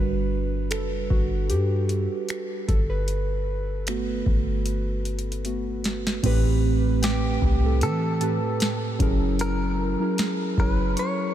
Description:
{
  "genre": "contemporary R&B",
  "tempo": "76 BPM",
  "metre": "4/4",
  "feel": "swing 54% on 16ths",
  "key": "unclear",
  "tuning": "A4 = 440 Hz",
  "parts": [
    { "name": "muted felt-like synth keys", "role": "accompaniment", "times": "0.0-11.3 s", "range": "A2 to C#5", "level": "-26 LUFS", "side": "right 2 dB", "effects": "chorus" },
    { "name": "warm 808-style bass", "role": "bass", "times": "0.0-11.0 s", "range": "F#1 to E3", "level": "-26 LUFS", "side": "equal", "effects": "none" },
    { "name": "booming analog drum machine", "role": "drums", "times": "0.7-11.2 s", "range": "crash cymbal, finger snaps, hi-hat, kick drum, snare drum", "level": "-27 LUFS", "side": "equal", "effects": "none" },
    { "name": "direct-recorded clean electric guitar", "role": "melody", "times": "7.0-11.3 s", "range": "G4 to C#5", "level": "-30 LUFS", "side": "equal", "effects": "diffuse ambient delay" },
    { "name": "soft round pluck", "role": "texture", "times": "7.0-11.3 s", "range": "G5 to C#6", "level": "-45 LUFS", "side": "left 2 dB", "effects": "none" }
  ],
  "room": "light reverb",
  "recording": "none",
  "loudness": "-22 LUFS",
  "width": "side -11 dB against mid",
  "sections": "0.0-6.2 A section; 6.2-11.3 B section",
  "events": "synth keys solo 0.0-6.2; drum fill 4.7-6.2",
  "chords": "0.0 Gmaj9/F#; 2.7 Gmaj7; 6.2 Am7; 9.0 F#7"
}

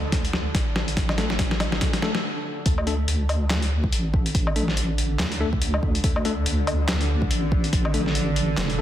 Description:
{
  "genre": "deep dubstep",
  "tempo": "142 BPM",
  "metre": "4/4",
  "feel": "swing 58% on 16ths, half-time",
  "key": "unclear",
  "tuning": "A4 = 438 Hz",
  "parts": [
    { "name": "bowed-like drone", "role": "sustained chords", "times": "0.0-8.8 s", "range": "D3", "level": "-31 LUFS", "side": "right 1 dB", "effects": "built-in reverb" },
    { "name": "deep soft wobble bass", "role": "bass", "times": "0.0-8.8 s", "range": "F1 to D2", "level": "-25 LUFS", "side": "equal", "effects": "chorus, tube saturation" },
    { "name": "electronic kick drum", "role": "drums", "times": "0.1-7.8 s", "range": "none", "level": "-24 LUFS", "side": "equal", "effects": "none" },
    { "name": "trip hop sampler-style drum kit", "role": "drums", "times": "0.1-8.8 s", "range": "handclaps, hi-hat, snare drum, woodblock", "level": "-26 LUFS", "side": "left 1 dB", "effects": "none" },
    { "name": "bell-like tine electric piano", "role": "stabs", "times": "1.2-8.8 s", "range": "A3 to A4", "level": "-32 LUFS", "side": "left 3 dB", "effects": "fast stereo tremolo, dub echo" }
  ],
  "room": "light reverb, digital ambience",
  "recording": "dense, heavily limited modern master",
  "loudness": "-21 LUFS",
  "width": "side -12 dB against mid",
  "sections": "0.0-2.7 A section; 2.7-8.8 B section",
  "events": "build-up 0.0-2.7; drum fill 0.0-2.2; stop 2.2-2.7; drop 2.7-8.8",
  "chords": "0.0 D5"
}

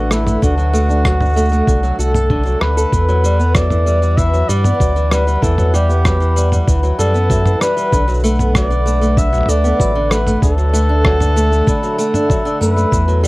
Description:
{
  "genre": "folktronica",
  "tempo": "96 BPM",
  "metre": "4/4",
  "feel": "straight",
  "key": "E minor",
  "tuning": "A4 = 440 Hz",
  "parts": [
    { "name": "mellow flugelhorn", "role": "melody", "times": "0.0-13.2 s", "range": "E4 to E5", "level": "-20 LUFS", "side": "equal", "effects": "tape echo" },
    { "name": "pedal harmonium", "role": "sustained chords", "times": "0.0-13.3 s", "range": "D3 to F#5", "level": "-25 LUFS", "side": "right 1 dB", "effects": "none" },
    { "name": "fingerpicked old ladder-braced acoustic guitar", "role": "arpeggios", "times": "0.0-13.3 s", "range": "D3 to A4", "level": "-20 LUFS", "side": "equal", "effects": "none" },
    { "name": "warm sub bass", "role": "bass", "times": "0.0-13.3 s", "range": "A1 to G2", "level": "-15 LUFS", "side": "equal", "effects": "none" },
    { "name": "lo-fi sampler-style drum kit", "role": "drums", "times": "0.1-13.3 s", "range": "cabasa, rim click, toms", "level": "-22 LUFS", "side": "equal", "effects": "overdrive, small room reverb" },
    { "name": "electronic kick drum", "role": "drums", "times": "0.4-13.0 s", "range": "none", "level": "-17 LUFS", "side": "equal", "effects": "overdrive, small room reverb" },
    { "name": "vibraphone with medium hard mallets", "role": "second line", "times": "3.6-13.1 s", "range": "D5 to E6", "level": "-26 LUFS", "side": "left 2 dB", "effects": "tape echo" }
  ],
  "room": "little or no reverb",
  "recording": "dry, close 1970s-style studio recording, vinyl crackle",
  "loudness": "-12 LUFS",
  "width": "side -21 dB against mid",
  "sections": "0.0-2.9 A section; 2.9-13.3 B section",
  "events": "none",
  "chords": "0.4 D; 2.9 Emadd9; 7.9 Bm7; 10.4 D"
}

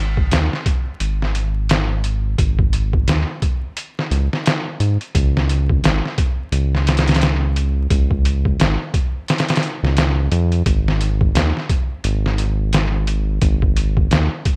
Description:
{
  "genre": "trip hop",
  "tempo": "87 BPM",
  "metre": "4/4",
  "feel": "swing 59% on 16ths",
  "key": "unclear",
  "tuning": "A4 = 436 Hz",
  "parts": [
    { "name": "round analog bass", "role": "bass", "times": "0.0-14.3 s", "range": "G#1 to G#2", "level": "-20 LUFS", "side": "equal", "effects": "none" },
    { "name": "trip hop sampler-style drum kit", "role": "drums", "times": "0.2-14.6 s", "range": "hi-hat, kick drum, snare drum", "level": "-20 LUFS", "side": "equal", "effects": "small room ambience" }
  ],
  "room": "digital ambience",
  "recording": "vinyl crackle",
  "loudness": "-18 LUFS",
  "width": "mono",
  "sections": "0.0-14.6 A section",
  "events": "none",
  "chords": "none"
}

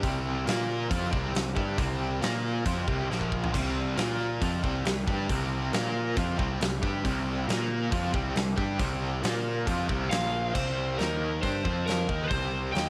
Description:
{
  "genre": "blues rock power trio and southern rock",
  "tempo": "137 BPM",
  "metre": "4/4",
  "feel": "straight",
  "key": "C mixolydian",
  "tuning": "A4 = 441 Hz",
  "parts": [
    { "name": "percussive tonewheel organ", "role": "sustained chords", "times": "0.0-10.6 s", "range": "F3 to Bb4", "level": "-44 LUFS", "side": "equal", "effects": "none" },
    { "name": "overdriven electric guitar", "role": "riff", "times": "0.0-12.9 s", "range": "Bb2 to Bb4", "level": "-34 LUFS", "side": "equal", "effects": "tremolo" },
    { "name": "fuzz picked electric bass", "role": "bass", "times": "0.0-12.9 s", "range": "Bb1 to Bb2", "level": "-33 LUFS", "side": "equal", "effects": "overdrive" },
    { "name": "big rock drum kit", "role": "drums", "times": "0.0-12.9 s", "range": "crash cymbal, hi-hat, kick drum, snare drum, toms", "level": "-35 LUFS", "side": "equal", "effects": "none" },
    { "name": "overdriven slide guitar", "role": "melody", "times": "10.1-12.9 s", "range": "Bb4 to G5", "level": "-34 LUFS", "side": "equal", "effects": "none" }
  ],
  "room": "light reverb, small room ambience",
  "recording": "none",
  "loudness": "-29 LUFS",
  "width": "mono",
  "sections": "0.0-10.5 A section; 10.5-12.9 B section",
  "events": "drum fill 3.1-3.5",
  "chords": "0.5 Bb5; 0.9 C; 2.2 Bb5; 2.7 C; 3.1 Bb5; 3.5 C; 4.0 Bb5; 4.4 C; 5.7 Bb5; 6.2 C; 7.5 Bb5; 7.9 C; 9.2 Bb5; 9.7 C; 10.1 Bb5; 10.5 C5; 11.0 Eb5; 11.4 C5; 11.6 F5; 12.1 C5"
}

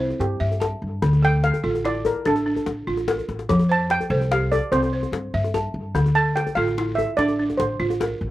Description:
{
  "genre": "west african traditional, West African string and xylophone music",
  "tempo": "97 BPM (dotted quarters)",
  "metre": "12/8",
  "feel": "straight",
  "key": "unclear",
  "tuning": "A4 = 440 Hz",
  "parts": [
    { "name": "steel pan", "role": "melody", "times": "0.0-8.2 s", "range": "E4 to A5", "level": "-24 LUFS", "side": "right 2 dB", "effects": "none" },
    { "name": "balafon", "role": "arpeggios", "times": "0.0-8.3 s", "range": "D3 to A5", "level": "-23 LUFS", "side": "equal", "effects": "none" },
    { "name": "upright bass", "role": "bass", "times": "0.0-8.3 s", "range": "A1 to G2", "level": "-26 LUFS", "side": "equal", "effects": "none" },
    { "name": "djembe", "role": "percussion", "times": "0.1-8.1 s", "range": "none", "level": "-28 LUFS", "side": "left 5 dB", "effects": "slapback echo" }
  ],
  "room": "little or no reverb",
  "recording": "recorded outdoors, with no room sound",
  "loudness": "-19 LUFS",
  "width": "side -15 dB against mid",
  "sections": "0.0-8.3 A section",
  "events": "steel pan solo 0.0-8.3; drum fill 3.2-3.5",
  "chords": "0.0 C; 1.0 Dm; 3.5 F; 4.7 C; 6.0 Dm"
}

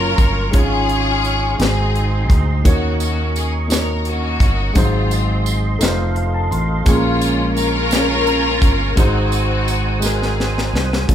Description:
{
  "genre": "slow gospel",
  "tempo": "57 BPM (dotted quarters)",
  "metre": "6/8",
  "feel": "straight",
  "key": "unclear",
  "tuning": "A4 = 440 Hz",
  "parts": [
    { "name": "rich studio string section", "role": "melody", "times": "0.0-11.1 s", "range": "Ab3 to Bb4", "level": "-21 LUFS", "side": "left 2 dB", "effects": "none" },
    { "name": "dark upright piano", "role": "accompaniment", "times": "0.0-11.1 s", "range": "Ab2 to C6", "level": "-22 LUFS", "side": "equal", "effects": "none" },
    { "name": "tonewheel organ", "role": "sustained chords", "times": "0.0-11.1 s", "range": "Ab3 to Eb6", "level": "-27 LUFS", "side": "right 3 dB", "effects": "slow rotary speaker, chorus vibrato" },
    { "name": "fingered electric bass", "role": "bass", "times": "0.0-11.1 s", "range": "F1 to Eb2", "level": "-20 LUFS", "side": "equal", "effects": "none" },
    { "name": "tight funk drum kit", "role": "drums", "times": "0.2-11.1 s", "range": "hi-hat, kick drum, snare drum", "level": "-17 LUFS", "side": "equal", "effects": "none" },
    { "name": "tambourine", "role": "percussion", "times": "2.7-10.4 s", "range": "none", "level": "-29 LUFS", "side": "right 7 dB", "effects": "none" }
  ],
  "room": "light reverb",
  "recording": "band playing live in one room",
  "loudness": "-14 LUFS",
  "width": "side -10 dB against mid",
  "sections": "0.0-11.1 A section",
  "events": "upright piano fill 5.8-6.9; drum fill 10.0-11.1",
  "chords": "0.0 Gbmaj7; 0.5 Db/Ab; 1.6 Ab7; 2.6 Ebm7; 4.8 Ab7; 5.8 F7; 6.9 Bbm7; 9.0 Ab7"
}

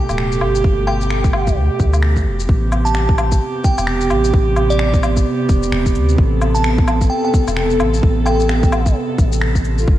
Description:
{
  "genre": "future garage",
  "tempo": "130 BPM",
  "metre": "4/4",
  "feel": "swing 60% on 16ths",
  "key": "A minor",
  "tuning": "A4 = 440 Hz",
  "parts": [
    { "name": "dark studio string section", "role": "sustained chords", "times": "0.0-10.0 s", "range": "B2 to A4", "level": "-19 LUFS", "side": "right 2 dB", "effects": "stereo widening, sidechain pumping" },
    { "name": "soft dub sub bass", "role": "bass", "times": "0.1-10.0 s", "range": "D1 to D2", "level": "-17 LUFS", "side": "equal", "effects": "sidechain pumping" },
    { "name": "electronic shaker, woodblock, finger snaps and cabasa", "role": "drums", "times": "0.1-9.9 s", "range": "none", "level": "-25 LUFS", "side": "left 2 dB", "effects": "vintage 12-bit sampler grit" },
    { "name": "electronic kick drum", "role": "drums", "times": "0.6-10.0 s", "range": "none", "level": "-16 LUFS", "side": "equal", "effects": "vintage 12-bit sampler grit" },
    { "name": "glassy synth bell", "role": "melody", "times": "0.9-8.9 s", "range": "D5 to A5", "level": "-25 LUFS", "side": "right 1 dB", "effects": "chorus, tremolo, analog delay" }
  ],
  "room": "moderate lush hall reverb, RT60 2.6 s",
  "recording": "dreamy mix soaked in reverb, cassette tape",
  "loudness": "-13 LUFS",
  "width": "side -13 dB against mid",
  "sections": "0.0-2.5 A section; 2.5-10.0 B section",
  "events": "none",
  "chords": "0.0 Gadd9; 2.5 Am9"
}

